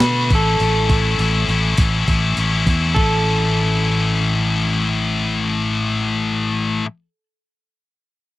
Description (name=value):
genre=indie rock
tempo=101 BPM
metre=4/4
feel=straight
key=A major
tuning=A4 = 436 Hz
part: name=electric guitar at the edge of break-up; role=melody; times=0.0-6.8 s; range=A4 to B4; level=-22 LUFS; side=right 1 dB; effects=tape echo
part: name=scooped high-gain guitar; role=riff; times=0.0-6.9 s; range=A2 to F#4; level=-19 LUFS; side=left 4 dB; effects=distortion
part: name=fingered electric bass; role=bass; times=0.0-6.8 s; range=A1 to B2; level=-20 LUFS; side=equal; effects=none
part: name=crisp 8-bit digital drum machine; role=drums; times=0.0-3.1 s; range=hi-hat, kick drum, snare drum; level=-18 LUFS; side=equal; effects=overdrive
room=little or no reverb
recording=dry, close 1970s-style studio recording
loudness=-16 LUFS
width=side -16 dB against mid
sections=0.0-3.0 A section; 3.0-5.3 B section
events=none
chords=0.3 A